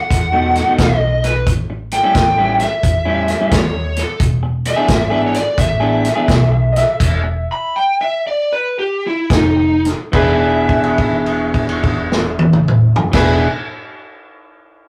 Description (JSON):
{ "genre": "electric blues shuffle", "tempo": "70-88 BPM", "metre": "4/4", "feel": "swing 66% on 8ths", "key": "E mixolydian", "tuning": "A4 = 440 Hz", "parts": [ { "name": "lead guitar through a small cranked amp", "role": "melody", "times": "0.0-13.4 s", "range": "Eb4 to B5", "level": "-20 LUFS", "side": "equal", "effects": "overdrive" }, { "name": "electric guitar through a small old amp", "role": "riff", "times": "0.1-13.5 s", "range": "A2 to G#4", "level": "-21 LUFS", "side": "equal", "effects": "none" }, { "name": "upright bass", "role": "bass", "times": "0.1-13.4 s", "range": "E1 to E2", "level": "-22 LUFS", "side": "equal", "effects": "none" }, { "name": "vintage drum kit", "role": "drums", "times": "0.1-13.3 s", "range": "crash cymbal, hi-hat, kick drum, snare drum, toms", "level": "-19 LUFS", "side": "equal", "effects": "none" }, { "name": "bright upright piano", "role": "second line", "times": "6.7-13.5 s", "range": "G#4 to E5", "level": "-24 LUFS", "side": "equal", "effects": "none" } ], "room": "moderate studio reverb, RT60 0.6 s", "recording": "rough rehearsal-room recording, warm saturation", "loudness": "-15 LUFS", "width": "mono", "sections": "0.0-10.1 A section; 10.1-13.5 B section", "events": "slowing down 4.2-10.1; stop 7.0-9.3; held note 10.1-13.0", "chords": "0.0 B7; 1.5 A7; 4.2 E7; 9.3 F7(no3); 10.1 E7", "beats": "0.10 0.79 | 1.47 2.15 2.83 3.51 | 4.19 4.88 5.57 6.27 | 6.99 7.73 8.50 9.30 | 10.13 10.98 11.83 12.68" }